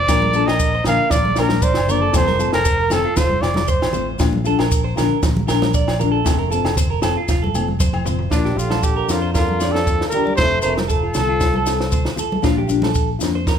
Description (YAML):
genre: highlife guitar band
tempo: 116 BPM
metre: 4/4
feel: straight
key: Bb major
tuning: A4 = 437 Hz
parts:
  - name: breathy trumpet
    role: melody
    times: 0.0-4.1, 8.3-12.1 s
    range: D4 to F5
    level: -20 LUFS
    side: right 1 dB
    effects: none
  - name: electric guitar through a small old amp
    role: arpeggios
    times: 0.0-13.6 s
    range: F4 to D5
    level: -24 LUFS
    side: right 6 dB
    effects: none
  - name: fingered electric bass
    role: bass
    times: 0.0-13.6 s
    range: F1 to F2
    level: -23 LUFS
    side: equal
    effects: none
  - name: nylon-string guitar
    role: accompaniment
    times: 0.1-13.4 s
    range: F3 to F4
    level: -24 LUFS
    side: left 9 dB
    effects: none
  - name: compact cocktail drum kit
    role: drums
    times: 0.1-13.6 s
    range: kick drum, snare drum, toms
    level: -21 LUFS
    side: equal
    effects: none
  - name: agogo bells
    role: percussion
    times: 0.1-8.1 s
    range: none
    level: -32 LUFS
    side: left 5 dB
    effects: none
  - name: maracas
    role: percussion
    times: 0.1-13.6 s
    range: none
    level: -31 LUFS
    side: left 4 dB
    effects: none
  - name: congas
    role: percussion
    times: 0.2-13.3 s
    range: none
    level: -28 LUFS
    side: right 1 dB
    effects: none
  - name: trombone with cup mute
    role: second line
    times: 8.3-12.2 s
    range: Bb2 to A3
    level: -29 LUFS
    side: left 3 dB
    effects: none
room: moderate large studio reverb, RT60 1.3 s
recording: band playing live in one room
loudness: -15 LUFS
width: side -8 dB against mid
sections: 0.0-8.3 A section; 8.3-13.6 B section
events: drum fill 7.3-8.3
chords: 0.1 Bb; 2.1 F; 4.2 Bb; 6.3 F; 8.3 Bb; 10.4 F; 12.4 Bb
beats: | 0.09 0.60 1.12 1.63 | 2.15 2.66 3.18 3.69 | 4.21 4.72 5.24 5.75 | 6.26 6.78 7.29 7.81 | 8.32 8.84 9.35 9.87 | 10.38 10.90 11.41 11.93 | 12.44 12.96 13.47